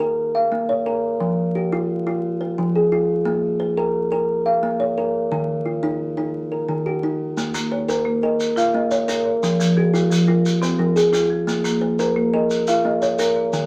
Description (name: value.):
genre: southern african traditional, mbira-style interlocking cycle.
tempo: 117 BPM (dotted quarters).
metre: 12/8.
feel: straight.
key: Bb equiheptatonic.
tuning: A4 = 436 Hz.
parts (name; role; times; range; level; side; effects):
kalimba; arpeggios; 0.0-13.7 s; Eb3 to F5; -22 LUFS; equal; none.
maracas; percussion; 7.4-13.7 s; none; -32 LUFS; equal; none.
marimba with medium hard mallets; arpeggios; 7.5-13.7 s; F3 to Eb5; -24 LUFS; equal; none.
room: wet studio reverb, RT60 0.6 s.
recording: vinyl crackle.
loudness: -20 LUFS.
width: mono.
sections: 0.0-7.4 A section; 7.4-13.7 A section.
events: none.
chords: 0.0 Bbm; 1.2 Fm; 3.3 Bbm; 5.3 Eb; 7.4 Bbm; 9.4 Fm; 11.5 Bbm.